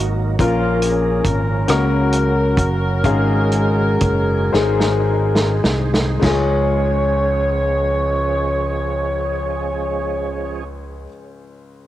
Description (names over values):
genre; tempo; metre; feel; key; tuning
slow gospel; 33-47 BPM (dotted quarters); 6/8; straight; Db major; A4 = 439 Hz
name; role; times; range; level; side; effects
warm horn section; melody; 0.0-10.7 s; Bb3 to Db5; -22 LUFS; equal; cassette tape
clear grand piano; accompaniment; 0.0-11.9 s; Db2 to F5; -22 LUFS; left 5 dB; none
overdriven tonewheel organ; sustained chords; 0.0-10.6 s; Db3 to C5; -28 LUFS; right 8 dB; slow rotary speaker, chorus vibrato
fingered electric bass; bass; 0.0-11.1 s; Gb1 to Db2; -20 LUFS; right 1 dB; none
warm soul drum kit; drums; 0.4-6.5 s; hi-hat, kick drum, rim click, snare drum, splash cymbal; -20 LUFS; right 1 dB; cassette tape
room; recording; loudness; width
light reverb; home recording on cassette; -15 LUFS; side -13 dB against mid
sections
0.0-6.2 A section; 6.2-9.9 B section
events
slowing down 0.4-6.2; drum fill 4.5-6.2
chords
0.4 Bbm; 1.7 Gb/Db; 3.0 Db/Ab; 4.5 Ab; 6.2 Db